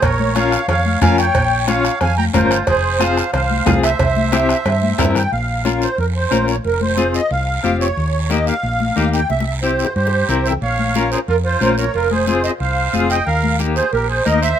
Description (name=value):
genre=latin, cumbia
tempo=181 BPM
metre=4/4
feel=straight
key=unclear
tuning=A4 = 440 Hz
part: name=musette accordion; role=melody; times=0.0-14.6 s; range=Bb4 to Bb5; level=-19 LUFS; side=right 2 dB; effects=none
part: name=bright trumpet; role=second line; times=0.0-5.1, 10.0-14.6 s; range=F4 to G5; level=-24 LUFS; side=right 6 dB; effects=none
part: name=hollow-body short-scale fingered electric bass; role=bass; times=0.0-14.5 s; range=F1 to G2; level=-20 LUFS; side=equal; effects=none
part: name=bombo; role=percussion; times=0.0-5.3 s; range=none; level=-22 LUFS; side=equal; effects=none
part: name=congas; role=percussion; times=0.0-14.4 s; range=none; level=-23 LUFS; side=left 5 dB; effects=none
part: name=cowbell and timbales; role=percussion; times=0.0-5.2 s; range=none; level=-24 LUFS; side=right 3 dB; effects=none
part: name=guiro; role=percussion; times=0.0-14.6 s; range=none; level=-31 LUFS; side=right 7 dB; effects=none
part: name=clean electric guitar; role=accompaniment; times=0.4-14.5 s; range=Bb3 to Db5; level=-21 LUFS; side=left 6 dB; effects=tremolo
room=light reverb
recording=minimal, uncompressed stereo recording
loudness=-14 LUFS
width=side -9 dB against mid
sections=0.0-5.3 A section; 5.3-14.6 B section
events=drum fill 4.8-5.3, 9.3-10.6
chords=0.0 Bbm; 2.7 Fm; 4.0 C; 5.3 Bbm; 6.6 Fm; 8.0 Ebadd9; 9.3 C; 10.6 Bbm; 11.9 Fm; 13.3 Ebadd9